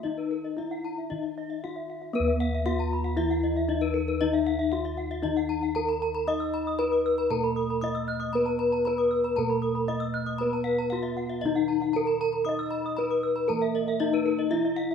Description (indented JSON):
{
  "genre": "Balinese gamelan",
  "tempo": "116 BPM",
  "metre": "4/4",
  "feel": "straight",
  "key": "Eb pelog",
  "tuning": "A4 = 440 Hz",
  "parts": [
    { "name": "gamelan-type bronze metallophone", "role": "melody", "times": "0.0-14.9 s", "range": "Cb4-40c to Eb5", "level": "-27 LUFS", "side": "left 2 dB", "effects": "none" },
    { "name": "gamelan-type bronze metallophone", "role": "accompaniment", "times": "0.0-14.9 s", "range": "Eb3 to Eb4", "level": "-35 LUFS", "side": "right 5 dB", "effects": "none" },
    { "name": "gamelan-type bronze metallophone", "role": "arpeggios", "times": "0.0-14.9 s", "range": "Cb5-40c to Fb6", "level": "-34 LUFS", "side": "left 5 dB", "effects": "none" },
    { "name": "gamelan-type bronze metallophone", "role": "arpeggios", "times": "0.0-14.9 s", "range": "Bb4-45c to Gb6-50c", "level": "-37 LUFS", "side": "right 2 dB", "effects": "none" },
    { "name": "gamelan-type bossed gongs", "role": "bass", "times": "0.0-14.9 s", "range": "Eb2 to Eb5", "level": "-33 LUFS", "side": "left 2 dB", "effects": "none" }
  ],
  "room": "light reverb, small room ambience",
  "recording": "rough home demo mix",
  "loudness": "-25 LUFS",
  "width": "side -7 dB against mid",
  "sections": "0.0-2.2 A section; 2.2-14.9 B section",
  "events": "none",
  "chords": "none",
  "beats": "| 0.04 0.58 1.11 1.64 | 2.16 2.67 3.19 3.70 | 4.22 4.73 5.25 5.76 | 6.28 6.79 7.31 7.82 | 8.34 8.85 9.37 9.88 | 10.40 10.91 11.43 11.95 | 12.46 12.97 13.49 14.01 | 14.52"
}